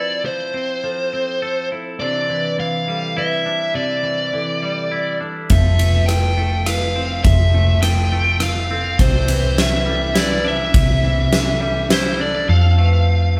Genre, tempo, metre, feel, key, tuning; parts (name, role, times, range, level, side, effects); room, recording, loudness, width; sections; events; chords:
post-rock; 103 BPM; 3/4; straight; F lydian; A4 = 440 Hz
fuzz lead guitar; melody; 0.0-13.4 s; C5 to G5; -23 LUFS; equal; distortion
pedal steel guitar; sustained chords; 0.0-13.4 s; E3 to A4; -37 LUFS; equal
twangy electric guitar; arpeggios; 0.0-13.4 s; C3 to A4; -29 LUFS; equal
vibraphone with medium hard mallets; arpeggios; 0.0-13.4 s; A4 to C5; -34 LUFS; equal
hollow-body short-scale picked electric bass; bass; 5.5-13.4 s; F1 to F2; -19 LUFS; equal
huge arena drum kit; drums; 5.5-12.0 s; kick drum, ride cymbal, rim click, snare drum; -22 LUFS; equal
moderate large studio reverb, RT60 1.1 s; band playing live in one room; -18 LUFS; mono
0.0-12.5 A section
0.0 Fmaj7; 2.0 Cadd9; 5.5 Fmaj7; 9.0 Cadd9; 12.5 F